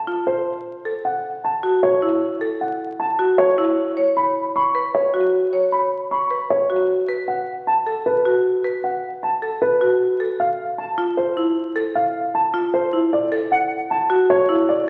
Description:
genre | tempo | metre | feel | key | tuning
classical, minimalist pattern music | 154 BPM | 4/4 | straight | A major | A4 = 440 Hz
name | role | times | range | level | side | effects
dark concert grand piano | melody | 0.0-14.9 s | B4 to C#6 | -23 LUFS | equal | none
marimba with hard mallets | arpeggios | 0.1-14.7 s | E4 to C#5 | -24 LUFS | equal | none
silver concert flute | arpeggios | 1.4-14.0 s | F#5 to B5 | -29 LUFS | equal | none
room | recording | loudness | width
wet recital hall reverb, RT60 1.6 s | very old 78 rpm record, vinyl crackle | -20 LUFS | mono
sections
0.0-14.9 A section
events
none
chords
0.0 F; 0.7 Esus24; 3.8 B5; 6.9 Asus2; 10.0 F; 13.1 D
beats
0.27 | 0.66 1.05 1.44 1.83 | 2.22 2.60 3.00 3.38 | 3.77 4.16 4.55 4.94 | 5.33 5.72 6.11 6.50 | 6.89 7.28 7.67 8.06 | 8.45 8.84 9.23 9.62 | 10.01 10.40 10.79 11.18 | 11.57 11.96 12.35 12.73 | 13.12 13.51 13.90 14.29 | 14.68

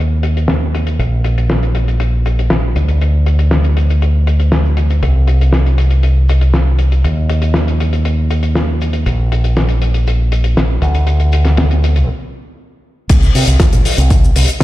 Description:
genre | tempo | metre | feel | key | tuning
nu-disco, nu disco | 119 BPM | 4/4 | straight | unclear | A4 = 440 Hz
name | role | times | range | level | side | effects
fingered electric bass with an envelope filter | bass | 0.0-14.4 s | Bb1 to C3 | -12 LUFS | equal | none
damped 70s drum kit | drums | 0.0-14.6 s | crash cymbal, hi-hat, shaker, snare drum | -19 LUFS | left 1 dB | low-pass filter on hats, small room reverb, low-pass filter on cymbals, low-pass filter on snare, low-pass filter on perc, low-pass filter on room
electronic kick drum | drums | 13.1-14.6 s | none | -10 LUFS | equal | small room reverb
room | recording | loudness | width
light reverb | played on a big sound system in a bare room, stone room reverb | -11 LUFS | side -16 dB against mid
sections
0.0-13.1 A section; 13.1-14.6 B section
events
stop 12.1-13.1; drop 13.1-14.6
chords
none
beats
0.49 | 0.99 1.50 2.00 2.51 | 3.01 3.52 4.02 4.52 | 5.03 5.53 6.04 6.54 | 7.04 7.55 8.05 8.56 | 9.06 9.57 10.07 10.57 | 11.08 11.58 12.09 12.59 | 13.10 13.60 14.10 14.61

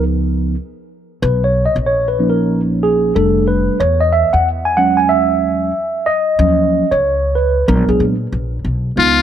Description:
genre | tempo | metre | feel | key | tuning
hip hop, jazz-hop | 93 BPM | 4/4 | swing 64% on 16ths | unclear | A4 = 442 Hz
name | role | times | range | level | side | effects
mellow tine electric piano | accompaniment | 0.0-9.2 s | F3 to G#5 | -14 LUFS | right 1 dB | wide subtle chorus
upright bass | bass | 0.0-9.2 s | F1 to Bb2 | -18 LUFS | left 1 dB | none
trumpet with metal mute | melody | 9.0-9.2 s | F4 | -10 LUFS | left 6 dB | none
room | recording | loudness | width
light reverb, small room reverb | none | -13 LUFS | side -10 dB against mid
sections
0.0-9.0 A section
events
tine electric piano solo 0.0-9.0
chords
0.0 Db9; 1.2 Bmaj9#11; 3.2 F6; 3.8 E6; 6.4 Ebm7; 7.7 Bb7b9b13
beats
0.58 | 1.23 1.87 2.52 3.16 | 3.81 4.45 5.10 5.74 | 6.39 7.03 7.68 8.32 | 8.97

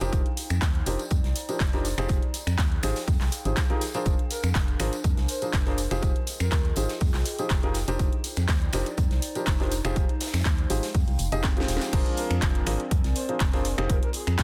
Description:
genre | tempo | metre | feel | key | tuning
piano house | 122 BPM | 4/4 | swing 53% on 16ths | F dorian | A4 = 444 Hz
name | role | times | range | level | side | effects
warm grand piano | riff | 0.0-14.0 s | F3 to Eb5 | -34 LUFS | equal | sidechain pumping, dub echo
organ-like FM bass | bass | 0.0-14.4 s | Eb1 to F2 | -30 LUFS | equal | sidechain pumping
house drum kit | drums | 0.0-14.4 s | crash cymbal, finger snaps, handclaps, hi-hat, snare drum | -35 LUFS | equal | overdrive
tambourine | percussion | 0.0-11.9 s | none | -42 LUFS | equal | none
warbly tape-like pad | texture | 0.0-14.4 s | Ab3 to Bb5 | -41 LUFS | equal | chorus, built-in reverb, sidechain pumping
big rock drum kit | drums | 0.1-14.4 s | hi-hat, snare drum | -45 LUFS | equal | none
electronic kick drum | drums | 0.1-14.4 s | none | -28 LUFS | equal | overdrive
breathy flute-like synth lead | melody | 4.3-6.9, 12.2-14.4 s | Ab4 to C5 | -40 LUFS | equal | phaser, subtle chorus, dub echo
room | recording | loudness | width
little or no reverb | dense, heavily limited modern master | -26 LUFS | mono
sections
0.0-11.9 A section; 11.9-14.4 B section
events
drum fill 11.4-11.9; drop 11.9-14.4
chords
0.0 Fm9; 4.1 Bb9/F; 5.8 Fm9; 11.9 Bb9/F; 13.7 Fm9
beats
| 0.13 0.62 1.11 1.60 | 2.09 2.58 3.08 3.57 | 4.06 4.55 5.04 5.54 | 6.03 6.52 7.01 7.50 | 8.00 8.49 8.98 9.47 | 9.96 10.45 10.95 11.44 | 11.93 12.42 12.91 13.40 | 13.90 14.39

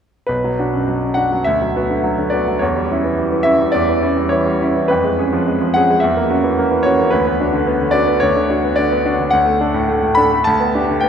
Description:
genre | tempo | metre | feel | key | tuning
classical, romantic character piece for solo piano | 106 BPM | 4/4 | rubato | B minor | A4 = 440 Hz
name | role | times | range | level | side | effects
bright concert grand piano | solo | 0.3-11.1 s | B1 to B5 | -14 LUFS | equal | none
room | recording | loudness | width
wet cathedral reverb, RT60 5.5 s | recorded in a church or concert hall | -14 LUFS | side -8 dB against mid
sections
0.3-11.1 A section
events
none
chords
0.3 Bm; 1.5 Bm/D; 2.6 C#dim/E; 4.9 C#7/E#; 6.0 F#7/E; 7.1 Bm/D; 9.3 D; 10.5 G/D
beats
| 0.29 0.88 1.46 2.04 | 2.62 3.19 3.75 4.32 | 4.89 5.45 6.02 6.57 | 7.12 7.67 8.23 8.78 | 9.33 9.88 10.45 11.02

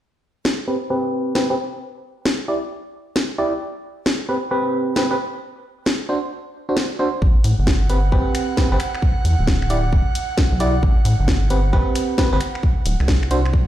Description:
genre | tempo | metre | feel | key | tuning
UK garage, two-step garage | 133 BPM | 4/4 | swing 65% on 16ths | A dorian | A4 = 439 Hz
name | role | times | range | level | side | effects
garage drum kit | drums | 0.5-13.5 s | finger snaps, hi-hat, snare drum | -22 LUFS | left 1 dB | small room ambience
FM electric piano | stabs | 0.7-13.4 s | C4 to D5 | -22 LUFS | right 1 dB | chorus, low-pass filter, digital delay
airy breathy pad | sustained chords | 7.2-13.7 s | F#5 | -30 LUFS | right 6 dB | chorus, sidechain pumping
rubbery square bass | bass | 7.2-13.6 s | D1 to A2 | -18 LUFS | equal | none
electronic kick drum | drums | 7.2-13.7 s | none | -18 LUFS | equal | small room ambience
room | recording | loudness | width
light reverb | played on a big sound system in a bare room, stone room reverb | -17 LUFS | side -12 dB against mid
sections
0.0-13.7 A section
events
filter sweep on FM electric piano 0.0-13.7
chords
0.0 Gadd11/C; 1.8 Em7; 3.6 Gadd11/C; 5.4 D7; 7.2 Am9; 9.0 Em7; 10.8 Am9; 12.6 D7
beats
| 0.00 0.45 0.90 1.35 | 1.80 2.25 2.71 3.16 | 3.61 4.06 4.51 4.96 | 5.41 5.86 6.32 6.77 | 7.22 7.67 8.12 8.57 | 9.02 9.47 9.92 10.38 | 10.83 11.28 11.73 12.18 | 12.63 13.08 13.53

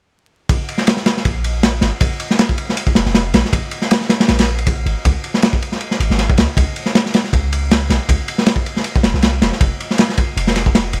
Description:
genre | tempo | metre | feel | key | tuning
drum and bass, jungle | 158 BPM | 4/4 | swing 55% on 16ths | Bb minor | A4 = 440 Hz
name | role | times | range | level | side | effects
warm 808-style bass | bass | 0.5-11.0 s | Eb1 to Db2 | -21 LUFS | equal | none
crunchy breakbeat drum kit | drums | 0.5-11.0 s | kick drum, ride cymbal, snare drum | -17 LUFS | equal | none
room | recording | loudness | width
little or no reverb | vinyl crackle | -16 LUFS | mono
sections
0.5-11.0 A section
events
drop 0.5-11.0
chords
none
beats
| 0.49 0.87 1.25 1.63 | 2.01 2.39 2.77 3.15 | 3.53 3.91 4.29 4.67 | 5.05 5.43 5.81 6.19 | 6.57 6.95 7.33 7.71 | 8.09 8.47 8.85 9.23 | 9.61 9.99 10.37 10.75

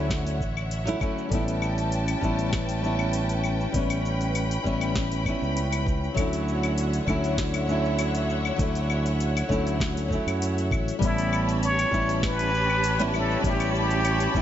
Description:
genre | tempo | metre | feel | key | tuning
sunset chillout | 99 BPM | 4/4 | straight | unclear | A4 = 441 Hz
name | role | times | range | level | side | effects
nylon-string guitar | accompaniment | 0.0-14.4 s | F#3 to E4 | -28 LUFS | moving between left 4 dB and right 3 dB | auto-pan, low-pass filter, digital delay
rich studio string section | sustained chords | 0.0-14.4 s | D3 to B5 | -31 LUFS | left 1 dB | none
fingered electric bass | bass | 0.0-14.4 s | A1 to F#2 | -28 LUFS | equal | none
electronic kick drum | drums | 0.1-14.4 s | none | -28 LUFS | equal | studio reverb
smooth R&B drum kit | drums | 0.1-14.4 s | claves, hi-hat, shaker, snare drum | -35 LUFS | left 4 dB | studio reverb
trumpet with plunger mute | melody | 11.0-14.4 s | E4 to C#5 | -26 LUFS | equal | ping-pong delay
twinkling granular texture | texture | 11.6-14.4 s | C#4 to C#6 | -36 LUFS | right 4 dB | built-in reverb
room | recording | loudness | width
light reverb, studio reverb | nothing above 7.6 kHz | -23 LUFS | side -10 dB against mid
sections
0.0-11.0 A section; 11.0-14.4 B section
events
none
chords
0.0 Dmaj9; 1.3 A9; 6.2 Dmaj9; 11.0 A9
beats
0.11 0.71 | 1.32 1.93 2.53 3.14 | 3.75 4.35 4.96 5.56 | 6.17 6.78 7.38 7.99 | 8.59 9.20 9.81 10.41 | 11.02 11.62 12.23 12.84 | 13.44 14.05

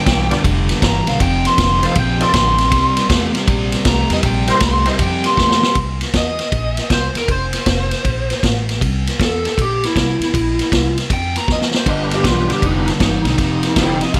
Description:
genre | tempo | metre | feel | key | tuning
electric blues shuffle | 158 BPM | 4/4 | swing 65% on 8ths | unclear | A4 = 440 Hz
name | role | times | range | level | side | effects
lead guitar through a small cranked amp | melody | 0.0-14.0 s | Eb4 to C6 | -22 LUFS | equal | overdrive, plate reverb
overdriven semi-hollow guitar | riff | 0.0-5.7, 11.9-14.2 s | F2 to A3 | -22 LUFS | equal | none
upright bass | bass | 0.1-14.2 s | F1 to F2 | -23 LUFS | equal | none
vintage drum kit | drums | 0.1-14.2 s | kick drum, ride cymbal, snare drum | -20 LUFS | equal | none
tonewheel organ | accompaniment | 0.3-5.0, 11.9-14.0 s | B3 to D5 | -27 LUFS | equal | slow rotary speaker, overdrive, chorus vibrato
electric guitar through a small old amp | second line | 13.8-14.2 s | G4 to F5 | -26 LUFS | equal | none
room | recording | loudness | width
light reverb | none | -16 LUFS | mono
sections
0.0-5.8 A section; 5.8-14.2 B section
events
lead electric guitar solo 0.0-5.8; drum fill 5.4-5.8, 11.5-11.9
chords
0.0 G7; 1.2 F7; 2.7 C7; 7.3 F; 8.8 C7; 11.9 G7; 13.4 F7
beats
0.06 0.44 0.82 | 1.20 1.58 1.96 2.34 | 2.72 3.10 3.48 3.86 | 4.24 4.62 5.00 5.38 | 5.76 6.14 6.52 6.90 | 7.28 7.66 8.04 8.43 | 8.81 9.19 9.57 9.95 | 10.33 10.71 11.10 11.48 | 11.86 12.24 12.62 13.00 | 13.38 13.76 14.14

